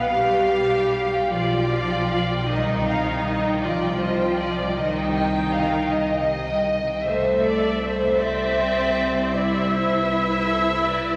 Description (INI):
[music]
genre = classical, slow romantic movement for string orchestra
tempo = 52 BPM (dotted quarters)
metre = 12/8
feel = rubato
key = C minor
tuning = A4 = 440 Hz
[part]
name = rich chamber violin section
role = melody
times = 0.0-11.2 s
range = C5 to G5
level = -35 LUFS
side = equal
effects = none
[part]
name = warm chamber violin section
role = second line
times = 0.0-11.2 s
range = A4 to G5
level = -27 LUFS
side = equal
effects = none
[part]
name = warm studio viola section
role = accompaniment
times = 0.0-11.2 s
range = Eb4 to E5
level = -27 LUFS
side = equal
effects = none
[part]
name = rich chamber cello section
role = bass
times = 0.0-11.2 s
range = Eb3 to E4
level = -30 LUFS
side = equal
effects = none
[part]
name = dark chamber double bass section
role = bass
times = 0.1-11.2 s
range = B1 to C2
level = -30 LUFS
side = equal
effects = none
[sound]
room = wet church reverb, RT60 3.4 s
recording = vinyl crackle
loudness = -22 LUFS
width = mono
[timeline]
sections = 0.0-11.2 A section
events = none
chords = 0.0 G7/B; 2.5 Cm; 7.1 D5/C